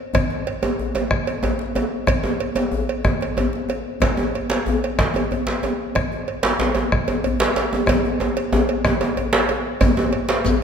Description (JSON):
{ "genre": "west african traditional, West African drum ensemble", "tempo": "124 BPM (dotted quarters)", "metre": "12/8", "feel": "straight", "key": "none", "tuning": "none", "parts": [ { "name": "bombo", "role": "percussion", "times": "0.1-10.0 s", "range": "none", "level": "-23 LUFS", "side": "equal", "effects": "none" }, { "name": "cowbell", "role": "percussion", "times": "0.1-10.4 s", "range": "none", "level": "-27 LUFS", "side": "right 6 dB", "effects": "none" }, { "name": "djembe", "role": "percussion", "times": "0.1-10.6 s", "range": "none", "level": "-26 LUFS", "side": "left 4 dB", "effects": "none" }, { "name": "djembe", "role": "percussion", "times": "0.6-10.6 s", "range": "none", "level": "-21 LUFS", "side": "right 1 dB", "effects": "none" }, { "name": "shekere", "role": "percussion", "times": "9.8-10.6 s", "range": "none", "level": "-30 LUFS", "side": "left 2 dB", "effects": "none" } ], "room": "wet scoring stage reverb, RT60 1.8 s", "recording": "none", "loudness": "-18 LUFS", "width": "side -7 dB against mid", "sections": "0.0-9.8 A section", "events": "drum fill 7.9-9.8", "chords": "none" }